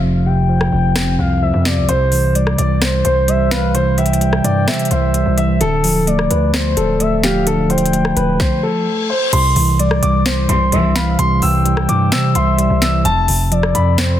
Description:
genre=hip hop, trap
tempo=129 BPM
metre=4/4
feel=half-time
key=unclear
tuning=A4 = 440 Hz
part: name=mellow tine electric piano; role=accompaniment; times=0.0-14.2 s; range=F2 to D5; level=-17 LUFS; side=right 2 dB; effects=none
part: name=distorted 808-style bass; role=bass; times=0.0-14.2 s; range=D1 to C3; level=-19 LUFS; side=equal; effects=distortion
part: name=gliding portamento lead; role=second line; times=0.3-14.2 s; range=C5 to G5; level=-23 LUFS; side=left 5 dB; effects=chorus, digital delay
part: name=trap drum kit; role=drums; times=0.6-14.1 s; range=crash cymbal, hi-hat, kick drum, rim click, snare drum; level=-21 LUFS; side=left 1 dB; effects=none
part: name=dark baby grand piano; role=melody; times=1.9-14.0 s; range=G4 to E6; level=-19 LUFS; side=equal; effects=digital delay
part: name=reverse cymbal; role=sound effects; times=8.6-9.3 s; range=none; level=-24 LUFS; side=left 6 dB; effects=none
part: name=clear symphonic string section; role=stabs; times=10.5-11.2 s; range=C2 to E3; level=-21 LUFS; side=left 2 dB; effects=none
room=light reverb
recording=dense, heavily limited modern master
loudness=-13 LUFS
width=side -11 dB against mid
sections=0.0-9.3 A section; 9.3-14.2 B section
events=break 0.0-1.9; reverse cymbal 8.6-9.3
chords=0.0 F5; 1.9 C; 5.6 Dm; 9.3 C; 13.0 F

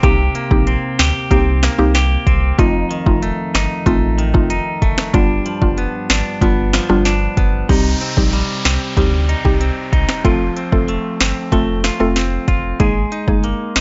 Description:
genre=dancehall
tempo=94 BPM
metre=4/4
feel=straight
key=C minor from 7.7 s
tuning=A4 = 441 Hz
part: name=mallet-like synth pluck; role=accompaniment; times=0.0-13.5 s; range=G3 to A4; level=-21 LUFS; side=equal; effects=chorus
part: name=clean electric guitar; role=arpeggios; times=0.0-13.8 s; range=F2 to Ab4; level=-23 LUFS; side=equal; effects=none
part: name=warm sub bass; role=bass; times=0.0-13.8 s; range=F1 to D2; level=-21 LUFS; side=equal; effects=none
part: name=afro-pop drum kit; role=drums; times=0.0-13.8 s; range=finger snaps, hi-hat, kick drum, rim click, snare drum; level=-19 LUFS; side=equal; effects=none
part: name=downlifter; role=sound effects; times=7.7-12.8 s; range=none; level=-30 LUFS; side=equal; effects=none
room=little or no reverb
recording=dry, gritty hardware recording, nothing above 7.7 kHz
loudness=-16 LUFS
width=mono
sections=0.0-7.7 A section; 7.7-13.8 B section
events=none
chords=0.0 Cm7; 2.6 F7; 5.1 G7; 7.7 Cm; 10.2 F; 12.8 Absus2

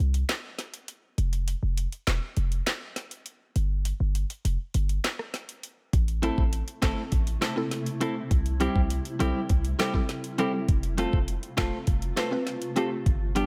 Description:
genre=dancehall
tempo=101 BPM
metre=4/4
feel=straight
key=unclear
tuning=A4 = 441 Hz
part: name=warm 808-style bass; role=bass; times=0.0-13.4 s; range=E1 to C2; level=-29 LUFS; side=equal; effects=none
part: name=island pop drum kit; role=drums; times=0.1-13.5 s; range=handclaps, hi-hat, kick drum, rim click, snare drum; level=-30 LUFS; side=equal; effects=none
part: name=granular cloud pad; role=sustained chords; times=7.0-13.5 s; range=C3 to G4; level=-39 LUFS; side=equal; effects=built-in reverb, sidechain pumping
part: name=mallet-like synth pluck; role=accompaniment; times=6.2-13.5 s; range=B3 to B4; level=-34 LUFS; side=equal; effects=chorus, sidechain pumping
part: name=clean electric guitar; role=arpeggios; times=6.2-13.5 s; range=G3 to A4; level=-34 LUFS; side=equal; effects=spring reverb
room=digital ambience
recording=none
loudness=-28 LUFS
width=mono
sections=0.0-13.5 A section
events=break 0.0-5.9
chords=0.0 N.C.; 5.9 Am; 8.3 C; 10.7 F

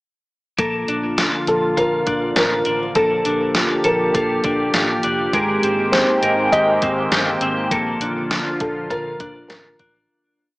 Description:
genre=dream pop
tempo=101 BPM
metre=4/4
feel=straight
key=Bb major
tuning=A4 = 441 Hz
part: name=phased analog pad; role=sustained chords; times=0.6-10.1 s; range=D3 to G4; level=-23 LUFS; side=equal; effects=phaser, chorus
part: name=twelve-string electric guitar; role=arpeggios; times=0.6-10.6 s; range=Ab3 to Bb4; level=-22 LUFS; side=left 1 dB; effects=wide subtle chorus, digital delay
part: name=vintage muted fingered electric bass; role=bass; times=0.6-10.1 s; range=F1 to Bb1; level=-34 LUFS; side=equal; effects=none
part: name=gated 80s digital drum machine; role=drums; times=0.6-9.9 s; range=hi-hat, kick drum, snare drum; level=-21 LUFS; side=equal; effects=gated reverb, gated reverb snare, overdrive
part: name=felt-muted upright piano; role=melody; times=1.5-9.9 s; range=A4 to Eb5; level=-20 LUFS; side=equal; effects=digital delay
room=moderate lush hall reverb, RT60 2.1 s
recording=small speaker sound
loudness=-16 LUFS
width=side -21 dB against mid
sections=0.6-10.1 A section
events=fade-out 7.7-10.1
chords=0.6 Bbmaj7; 5.3 Abmaj9; 7.7 Bbmaj7

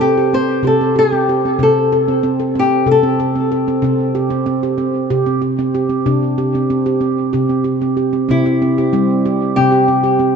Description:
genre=world meditative, meditative tuned percussion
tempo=188 BPM (eighths)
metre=7/8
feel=straight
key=C major pentatonic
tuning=A4 = 440 Hz
part: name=flamenco guitar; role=melody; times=0.0-3.6, 8.3-10.4 s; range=E4 to C5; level=-16 LUFS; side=left 3 dB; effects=diffuse ambient delay
part: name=handpan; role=arpeggios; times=0.0-10.4 s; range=C3 to A4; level=-15 LUFS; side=right 2 dB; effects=diffuse ambient delay
room=moderate church reverb, RT60 2.9 s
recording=nothing above 7.9 kHz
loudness=-13 LUFS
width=side -6 dB against mid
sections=0.0-8.3 A section; 8.3-10.4 B section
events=none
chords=0.0 C5; 1.6 Am/C; 3.8 C5; 6.1 G5/C; 8.3 C

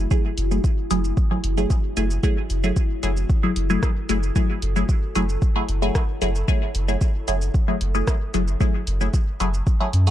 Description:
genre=dub techno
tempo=113 BPM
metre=4/4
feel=straight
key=F# minor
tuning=A4 = 440 Hz
part: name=deep dark ambient pad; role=sustained chords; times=0.0-10.1 s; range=A3 to A4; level=-33 LUFS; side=left 2 dB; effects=chorus, built-in reverb, sidechain pumping
part: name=soft dub sub bass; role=bass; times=0.0-10.1 s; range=F#1 to F#2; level=-22 LUFS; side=equal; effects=sidechain pumping
part: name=filtered dub chord stab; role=stabs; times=0.1-10.1 s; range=F#3 to G#4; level=-25 LUFS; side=left 1 dB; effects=phaser, sidechain pumping, dub echo
part: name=deep house drum kit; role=drums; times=0.1-10.1 s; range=hi-hat, rim click, shaker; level=-33 LUFS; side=equal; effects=overdrive
part: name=electronic kick drum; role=drums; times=0.1-9.8 s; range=none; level=-20 LUFS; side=equal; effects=overdrive
room=digital ambience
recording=dark, warm production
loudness=-19 LUFS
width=side -12 dB against mid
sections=0.0-10.1 A section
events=none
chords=0.0 F#m9

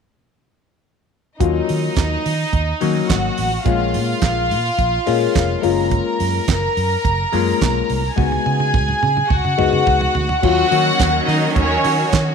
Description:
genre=disco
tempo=106 BPM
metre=4/4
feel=straight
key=unclear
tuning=A4 = 440 Hz
part: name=warm studio string section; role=second line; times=1.4-12.1 s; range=C#4 to A#5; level=-19 LUFS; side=equal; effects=none
part: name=overdriven clav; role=accompaniment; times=1.4-11.7 s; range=F#3 to F#4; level=-21 LUFS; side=left 11 dB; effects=phaser
part: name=vintage muted fingered electric bass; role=bass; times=1.4-12.3 s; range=E#1 to D#3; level=-22 LUFS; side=right 2 dB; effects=none
part: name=damped 70s drum kit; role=drums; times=1.4-12.3 s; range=crash cymbal, handclaps, hi-hat, kick drum, snare drum, toms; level=-22 LUFS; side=right 4 dB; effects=none
part: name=bright studio string section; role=sustained chords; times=10.4-12.3 s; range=D#3 to F#4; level=-22 LUFS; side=right 3 dB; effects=none
room=moderate echo chamber reverb, RT60 2.3 s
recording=1960s-style stereo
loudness=-15 LUFS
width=side -6 dB against mid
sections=1.4-10.4 A section; 10.4-12.3 B section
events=drum fill 8.2-10.4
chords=1.4 D#m9; 3.7 A#m7; 5.6 F#maj9; 8.2 C#7sus4; 10.4 D#m9

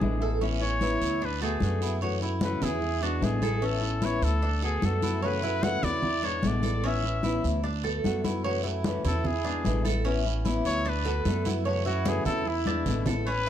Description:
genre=latin, Cuban son and guajira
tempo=149 BPM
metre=4/4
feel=straight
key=A major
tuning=A4 = 440 Hz
part: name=clear trumpet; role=melody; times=0.0-13.5 s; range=E4 to F#5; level=-32 LUFS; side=left 2 dB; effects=none
part: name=flamenco guitar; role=accompaniment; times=0.0-13.3 s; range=B2 to F#4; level=-32 LUFS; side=left 6 dB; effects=none
part: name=Cuban tres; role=arpeggios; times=0.0-13.5 s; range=A3 to C#5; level=-32 LUFS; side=right 5 dB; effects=none
part: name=upright bass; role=bass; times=0.0-13.5 s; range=A1 to F#2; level=-30 LUFS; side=right 1 dB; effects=none
part: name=congas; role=percussion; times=0.0-13.5 s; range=none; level=-33 LUFS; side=left 1 dB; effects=none
part: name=guiro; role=percussion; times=0.4-13.5 s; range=none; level=-41 LUFS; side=right 11 dB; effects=none
room=moderate large studio reverb, RT60 1.1 s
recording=dark, warm production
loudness=-25 LUFS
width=side -10 dB against mid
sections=0.0-13.3 A section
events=trumpet solo 0.0-13.3; drum fill 12.7-13.3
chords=0.4 Aadd9; 1.2 D6; 2.0 F#m7; 2.8 E7; 3.6 Aadd9; 4.4 D6; 5.2 F#m7; 6.0 E7; 6.8 Aadd9; 7.6 D6; 8.4 F#m7; 9.2 E7; 10.1 Aadd9; 10.9 D6; 11.7 F#m7; 12.5 E7

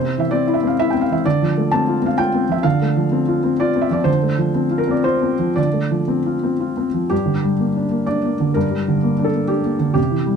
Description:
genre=neoclassical minimalist piano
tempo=115-130 BPM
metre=3/4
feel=rubato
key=unclear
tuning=A4 = 440 Hz
part: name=felt-muted upright piano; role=solo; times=0.0-10.4 s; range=G2 to A5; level=-16 LUFS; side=equal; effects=none
room=light reverb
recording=dark, warm production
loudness=-16 LUFS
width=side -6 dB against mid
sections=0.0-7.1 A section; 7.1-10.4 A section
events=none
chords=0.0 C; 1.2 Dm7; 7.1 Gm

